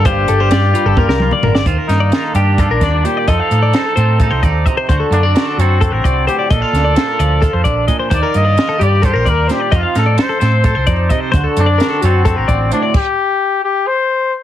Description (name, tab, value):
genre	math rock and midwest emo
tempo	261 BPM (eighths)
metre	7/8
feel	straight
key	unclear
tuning	A4 = 439 Hz
part	warm trumpet	melody	0.0-14.3 s	C4 to Eb5	-17 LUFS	left 2 dB	slapback echo
part	twangy electric guitar	accompaniment	0.0-12.9 s	G2 to Bb4	-21 LUFS	right 7 dB	lush chorus
part	twelve-string electric guitar	arpeggios	0.0-12.9 s	F4 to F5	-19 LUFS	left 5 dB	slapback echo
part	hollow-body short-scale fingered electric bass	bass	0.0-12.7 s	G1 to A2	-15 LUFS	equal	none
part	compact cocktail drum kit	drums	0.1-13.1 s	crash cymbal, hi-hat, kick drum, snare drum, toms	-16 LUFS	equal	none
room	little or no reverb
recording	heavily compressed radio sound, multiband compression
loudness	-11 LUFS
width	side -11 dB against mid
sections	0.0-1.7 A section; 1.7-14.4 B section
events	drum fill 1.0-1.7; stop 12.9-14.4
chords	0.0 Gm9; 1.7 Ebmaj9; 3.3 F7; 4.9 D7; 6.5 Bbmaj7; 8.1 Ebmaj9; 9.7 F7; 11.3 D7; 12.9 N.C.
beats	| 0.05 0.28 0.51 0.74 0.97 1.20 1.43 | 1.66 1.89 2.12 2.36 2.59 2.82 3.05 | 3.28 3.51 3.74 3.97 4.20 4.43 4.67 | 4.90 5.13 5.36 5.59 5.82 6.05 6.28 | 6.51 6.74 6.97 7.20 7.43 7.66 7.89 | 8.12 8.35 8.58 8.81 9.04 9.27 9.50 | 9.73 9.96 10.19 10.42 10.65 10.88 11.11 | 11.34 11.57 11.80 12.03 12.26 12.49 12.72 | 12.95 13.18 13.41 13.64 13.87 14.10 14.32